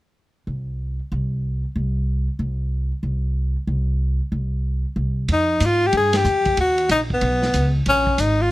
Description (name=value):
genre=jazz, small-group swing and bop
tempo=187 BPM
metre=4/4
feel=swing 64% on 8ths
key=F minor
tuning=A4 = 441 Hz
part: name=upright bass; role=bass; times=0.5-8.5 s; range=Ab1 to Ab2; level=-22 LUFS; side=equal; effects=none
part: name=warm tenor saxophone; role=melody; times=5.3-8.5 s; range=B3 to Ab4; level=-18 LUFS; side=left 1 dB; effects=none
part: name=vintage drum kit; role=drums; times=5.3-8.3 s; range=hi-hat, kick drum, ride cymbal, snare drum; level=-28 LUFS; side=right 1 dB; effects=none
room=little or no reverb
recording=close, detailed microphones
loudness=-19 LUFS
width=side -17 dB against mid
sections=0.2-5.3 A section; 5.3-8.5 B section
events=band accent 6.1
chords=0.2 N.C.; 5.3 Fm9; 6.6 Bmaj7 (rootless); 7.2 Bsus2; 7.9 Bbm7